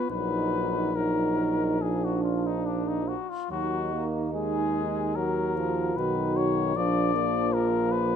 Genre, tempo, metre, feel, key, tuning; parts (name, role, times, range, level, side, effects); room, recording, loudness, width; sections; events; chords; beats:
classical, hymn-like piece for brass band; 70-79 BPM; 4/4; rubato; Eb minor; A4 = 441 Hz
mellow cornet; melody; 0.0-8.2 s; D4 to D5; -30 LUFS; left 10 dB
mellow French horn section; second line; 0.0-8.2 s; Cb4 to Gb4; -31 LUFS; right 6 dB
dark euphonium; accompaniment; 0.0-8.2 s; Bb3 to Gb4; -32 LUFS; left 3 dB
brilliant trombone; accompaniment; 0.1-8.2 s; Eb3 to Bb3; -33 LUFS; right 4 dB
warm tuba; bass; 0.1-8.2 s; Bb1 to Eb2; -31 LUFS; equal
light reverb; close, detailed microphones; -24 LUFS; side -8 dB against mid
0.0-8.2 A section
0.1 Ebm/Bb; 1.8 Bb; 3.5 Ebm; 6.8 Bb
| 0.11 0.95 1.81 2.66 | 3.51 4.34 5.15 5.96 | 6.75 7.53